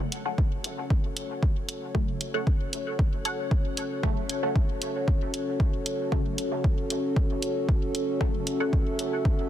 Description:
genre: dub techno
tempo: 115 BPM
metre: 4/4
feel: straight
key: F# minor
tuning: A4 = 440 Hz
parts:
  - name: dark analog pad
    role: sustained chords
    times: 0.0-9.5 s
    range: C#4 to E5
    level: -31 LUFS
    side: left 1 dB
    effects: chorus, sidechain pumping
  - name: filtered dub chord stab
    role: stabs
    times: 0.0-8.4 s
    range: C#3 to A3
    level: -37 LUFS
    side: left 1 dB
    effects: chorus, phaser, sidechain pumping, dub echo
  - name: electronic hi-hat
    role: drums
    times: 0.1-9.1 s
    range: none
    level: -35 LUFS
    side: right 1 dB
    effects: none
  - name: filtered dub chord stab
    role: riff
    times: 0.3-4.6, 8.6-8.7 s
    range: A4 to F#5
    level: -35 LUFS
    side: right 2 dB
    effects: phaser, sidechain pumping, dub echo
  - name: electronic kick drum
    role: drums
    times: 0.4-9.4 s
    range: none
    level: -25 LUFS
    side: equal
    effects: none
room: digital ambience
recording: dense, heavily limited modern master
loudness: -25 LUFS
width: side -11 dB against mid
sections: 0.0-9.5 A section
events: none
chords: 0.0 F#m

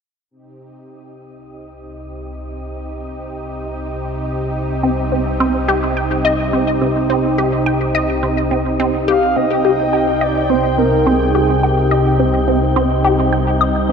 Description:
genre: ambient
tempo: 106 BPM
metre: 4/4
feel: straight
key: C minor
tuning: A4 = 440 Hz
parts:
  - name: lush unison pad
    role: sustained chords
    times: 0.3-13.9 s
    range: C3 to G5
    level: -20 LUFS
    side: equal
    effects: chorus
  - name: analog drone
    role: bass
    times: 1.9-13.9 s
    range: C2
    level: -22 LUFS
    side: equal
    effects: chorus, tube saturation
  - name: wind-like tuned noise texture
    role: texture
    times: 1.6-13.9 s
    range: Eb4 to G5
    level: -26 LUFS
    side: right 2 dB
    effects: built-in reverb
  - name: resonant blip pluck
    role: riff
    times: 4.8-13.9 s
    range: C4 to G5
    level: -18 LUFS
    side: equal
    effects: phaser, tape echo
  - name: breathy flute-like synth lead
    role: melody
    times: 9.1-12.7 s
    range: G4 to F5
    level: -19 LUFS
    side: right 1 dB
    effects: wide subtle chorus, cassette tape, tape echo
room: wet lush hall reverb, RT60 2.7 s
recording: none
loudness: -14 LUFS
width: side -6 dB against mid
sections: 0.3-9.4 A section; 9.4-13.9 B section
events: fade-in on analog synth pad 0.3-9.4; fade-in on synth drone 0.3-9.4; fade-in on synth texture 0.3-9.4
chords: 0.3 Cm

